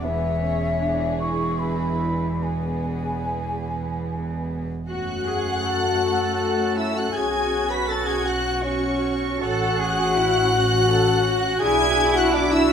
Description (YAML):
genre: cinematic, emotional film score for orchestra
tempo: 47-55 BPM (dotted quarters)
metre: 6/8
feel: rubato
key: F# minor from 4.9 s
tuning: A4 = 439 Hz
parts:
  - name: warm symphonic violin section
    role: melody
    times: 0.0-12.7 s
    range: B4 to B6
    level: -28 LUFS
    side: equal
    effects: none
  - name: dark symphonic violin section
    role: second line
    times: 0.0-12.7 s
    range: G#4 to B5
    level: -30 LUFS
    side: left 3 dB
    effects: none
  - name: mellow hollow silver concert flute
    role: second line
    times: 0.0-12.7 s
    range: C#5 to C#6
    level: -29 LUFS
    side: left 2 dB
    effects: none
  - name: dark symphonic viola section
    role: accompaniment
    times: 0.0-12.7 s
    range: A3 to F#4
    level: -28 LUFS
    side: right 2 dB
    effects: none
  - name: warm chamber double bass section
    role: bass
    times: 0.0-12.7 s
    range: E1 to F#2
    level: -28 LUFS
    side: right 3 dB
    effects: none
  - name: warm symphonic cello section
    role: bass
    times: 0.0-12.7 s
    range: E2 to A4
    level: -29 LUFS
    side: right 3 dB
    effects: none
  - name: mellow clarinet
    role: second line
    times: 4.9-12.7 s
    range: C#4 to B4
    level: -28 LUFS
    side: left 2 dB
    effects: none
  - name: dark French horn section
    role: sustained chords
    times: 4.9-12.7 s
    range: C#4 to B4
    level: -27 LUFS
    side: left 6 dB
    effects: none
room: wet recital hall reverb, RT60 1.6 s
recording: none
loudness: -20 LUFS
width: side -7 dB against mid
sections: 0.0-4.9 A section; 4.9-12.7 B section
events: none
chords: 0.0 E; 4.9 F#madd9; 7.1 Bsus2; 9.4 F#madd9/A; 11.6 Bm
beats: | 0.03 1.19 | 2.42 3.67 | 4.89 6.03 | 7.15 8.26 | 9.42 10.52 | 11.62 12.71